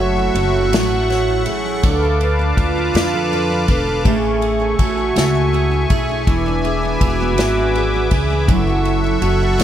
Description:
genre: six-eight pop ballad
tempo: 54 BPM (dotted quarters)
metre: 6/8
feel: straight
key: A major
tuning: A4 = 440 Hz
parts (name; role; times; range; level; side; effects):
- dark French horn section; second line; 0.0-9.6 s; E4 to A4; -21 LUFS; right 4 dB; none
- picked steel-string acoustic guitar; accompaniment; 0.0-9.6 s; D3 to C#5; -22 LUFS; equal; double-tracked left and right
- sweeping resonant pad; sustained chords; 0.0-9.6 s; A3 to D6; -22 LUFS; left 2 dB; chorus
- upright bass; bass; 0.0-9.6 s; E1 to F2; -20 LUFS; equal; none
- unplugged drum kit; drums; 0.4-9.6 s; kick drum, ride cymbal, snare drum; -21 LUFS; equal; none
room: small room ambience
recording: none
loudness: -14 LUFS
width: side -10 dB against mid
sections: 0.0-9.6 A section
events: none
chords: 0.0 F#m7; 1.8 Dm6; 4.1 Amaj7; 6.3 E7; 8.5 F#m7

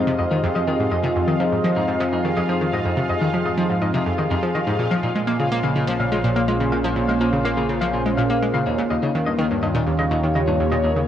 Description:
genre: ambient, sequencer-driven space music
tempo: 124 BPM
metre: 4/4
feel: straight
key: F minor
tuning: A4 = 443 Hz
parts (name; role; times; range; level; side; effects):
- phased analog pad; sustained chords; 0.0-11.1 s; Bb2 to Eb5; -22 LUFS; equal; phaser, chorus
- clean electric guitar; arpeggios; 0.0-10.9 s; Eb4 to F5; -28 LUFS; left 2 dB; auto-pan, ping-pong delay
- analog pluck; riff; 0.0-11.0 s; Eb2 to Bb3; -23 LUFS; equal; chorus, ping-pong delay
- analog drone; bass; 0.0-11.1 s; Bb1 to F2; -30 LUFS; equal; chorus
- bubbling stepped-filter texture; texture; 0.0-11.1 s; F4 to F5; -29 LUFS; left 1 dB; chorus, built-in reverb
room: wet plate reverb, RT60 2.6 s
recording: worn, warbling old tape, cassette tape, warbly pitch drift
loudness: -18 LUFS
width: side -10 dB against mid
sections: 0.0-11.1 A section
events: none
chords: 0.0 Fm7; 4.8 Bbm7; 8.7 Eb7

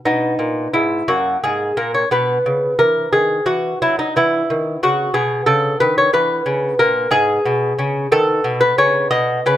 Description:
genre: classical, baroque-style dance for lute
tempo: 60 BPM (dotted quarters)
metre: 6/8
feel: rubato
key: B major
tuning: A4 = 439 Hz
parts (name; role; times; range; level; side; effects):
- lute; solo; 0.1-9.6 s; F#2 to D#5; -14 LUFS; equal; none
room: light reverb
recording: close, detailed microphones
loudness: -14 LUFS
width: side -12 dB against mid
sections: 0.0-9.6 A section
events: none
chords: 0.0 B; 1.1 F#; 2.1 B; 4.1 E5; 5.1 B; 6.1 E; 8.1 B

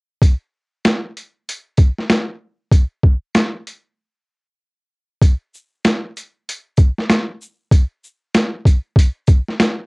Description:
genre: hip hop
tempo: 96 BPM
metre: 4/4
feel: swing 62% on 16ths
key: none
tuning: none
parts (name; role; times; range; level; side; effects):
- boom bap sampler-style drum kit; drums; 0.2-9.8 s; hi-hat, kick drum, shaker, snare drum; -13 LUFS; equal; overdrive, cassette tape
room: little or no reverb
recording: home recording on cassette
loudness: -15 LUFS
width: side -34 dB against mid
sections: 0.2-5.2 A section; 5.2-9.9 B section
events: break 4.0-5.2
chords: none

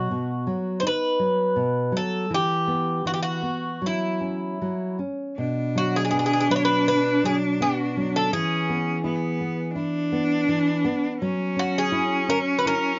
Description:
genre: fado-style ballad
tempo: 82 BPM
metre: 4/4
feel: rubato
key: B dorian from 5.4 s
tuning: A4 = 441 Hz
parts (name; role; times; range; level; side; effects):
- Greek bouzouki; melody; 0.0-13.0 s; E4 to C#5; -27 LUFS; equal; none
- nylon-string guitar; accompaniment; 0.0-13.0 s; B2 to E4; -29 LUFS; equal; none
- clear cello; second line; 5.4-13.0 s; B3 to D4; -27 LUFS; equal; none
room: moderate booth ambience, RT60 0.2 s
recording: nothing above 7.5 kHz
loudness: -24 LUFS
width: mono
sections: 0.0-5.4 A section; 5.4-13.0 B section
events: none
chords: 0.0 B; 2.3 Em; 3.8 F#5; 5.4 Bm; 8.3 E; 11.2 F#5

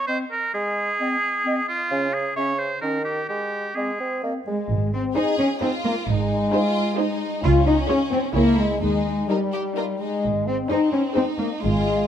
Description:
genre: cinematic, playful, whimsical film cue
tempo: 131 BPM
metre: 3/4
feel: straight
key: Ab major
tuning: A4 = 436 Hz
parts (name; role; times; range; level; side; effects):
- bright oboe; second line; 0.0-4.2 s; F4 to Db5; -24 LUFS; right 1 dB; none
- bright large flute ensemble; second line; 0.1-4.3 s; Eb5 to F5; -33 LUFS; right 2 dB; none
- clear clarinet; second line; 0.1-4.4 s; C4 to Db4; -31 LUFS; left 1 dB; none
- warm bassoon; accompaniment; 0.5-4.6 s; Db3 to C4; -28 LUFS; right 2 dB; none
- mellow French horn section; sustained chords; 4.5-12.1 s; G3 to F4; -23 LUFS; left 4 dB; none
- rich studio cello section; bass; 4.5-12.1 s; G3 to F4; -26 LUFS; right 2 dB; none
- rich studio double bass section; bass; 4.7-12.0 s; Ab1 to Eb2; -23 LUFS; right 3 dB; none
- rich studio violin section; melody; 5.2-11.5 s; Bb4 to Db5; -31 LUFS; left 4 dB; none
- clear studio violin section; second line; 5.2-12.1 s; C4 to Ab4; -29 LUFS; left 1 dB; none
- warm studio viola section; accompaniment; 5.2-11.5 s; Eb4 to Bb4; -30 LUFS; right 3 dB; none
room: moderate scoring stage reverb, RT60 1.7 s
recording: none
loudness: -20 LUFS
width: side -9 dB against mid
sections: 0.0-4.7 A section; 4.7-12.1 A section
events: none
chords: 0.0 Ab; 1.9 Db; 2.8 Eb7; 3.3 Ab; 7.4 Db; 8.4 Dbm; 8.8 Eb; 10.2 Ab

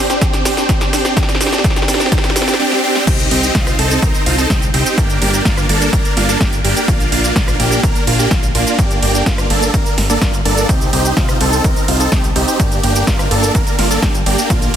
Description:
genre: EDM, festival progressive house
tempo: 126 BPM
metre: 4/4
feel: straight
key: G minor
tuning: A4 = 440 Hz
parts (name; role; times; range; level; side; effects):
- big supersaw lead; riff; 0.0-14.8 s; Bb3 to Bb4; -16 LUFS; right 1 dB; sidechain pumping, dub echo
- big-room dance drum kit; drums; 0.1-14.8 s; cabasa, crash cymbal, hi-hat, ride cymbal, rim click, snare drum; -20 LUFS; right 1 dB; overdrive, high-pass filter on hats, high-pass filter on perc, high-pass filter on snare, high-pass filter on cymbals, high-pass filter on room
- electronic kick drum; drums; 0.2-14.6 s; none; -16 LUFS; equal; overdrive
- fat analog bass; bass; 3.1-14.8 s; G1 to C2; -19 LUFS; equal; sidechain pumping
room: light reverb, digital ambience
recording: dense, heavily limited modern master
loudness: -12 LUFS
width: side -9 dB against mid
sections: 0.0-3.1 A section; 3.1-14.8 B section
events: build-up 0.0-3.1; drum fill 0.0-2.6, 2.6-3.1; drop 3.1-14.8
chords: 0.0 Csus2; 3.1 Cm; 5.0 Gm; 6.9 Bb; 8.8 Gm; 10.7 Cm; 12.6 Gm

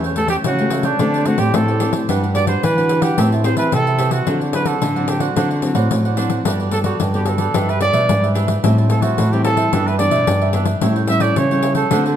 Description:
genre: samba and choro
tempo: 110 BPM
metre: 4/4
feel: straight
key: unclear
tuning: A4 = 437 Hz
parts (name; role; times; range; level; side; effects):
- cavaquinho; accompaniment; 0.0-12.2 s; D4 to A5; -25 LUFS; right 6 dB; none
- nylon-string guitar; accompaniment; 0.0-12.2 s; G2 to B4; -22 LUFS; left 3 dB; none
- nylon-string guitar; bass; 0.0-12.2 s; E2 to E3; -19 LUFS; right 1 dB; none
- pandeiro; percussion; 0.0-12.2 s; none; -23 LUFS; left 6 dB; none
- warm trumpet; melody; 0.2-12.0 s; D4 to E5; -21 LUFS; right 2 dB; none
room: moderate recital hall reverb, RT60 1.6 s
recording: none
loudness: -14 LUFS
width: side -10 dB against mid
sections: 0.0-12.2 A section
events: none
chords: 0.0 A7/E; 1.0 D7sus4; 2.1 Gmaj7; 3.2 Am9; 4.3 D9; 6.5 Gmaj9; 7.5 Em7/G; 8.6 Am7; 9.7 Em7/G; 10.8 A7

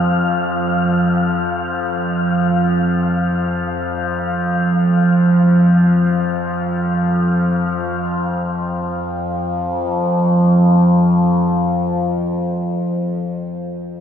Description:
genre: dark ambient drone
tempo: free time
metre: none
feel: none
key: unclear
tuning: A4 = 441 Hz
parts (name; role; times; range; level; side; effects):
- overtone-sweeping drone; drone; 0.0-13.0 s; F2 to F3; -15 LUFS; equal; chorus, built-in reverb
- wind-like tuned noise texture; texture; 0.0-8.1 s; F5; -26 LUFS; left 4 dB; built-in reverb
room: wet lush hall reverb, RT60 2.7 s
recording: dreamy mix soaked in reverb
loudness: -15 LUFS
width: side -8 dB against mid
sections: 0.0-8.1 A section; 8.1-12.1 B section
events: none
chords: none

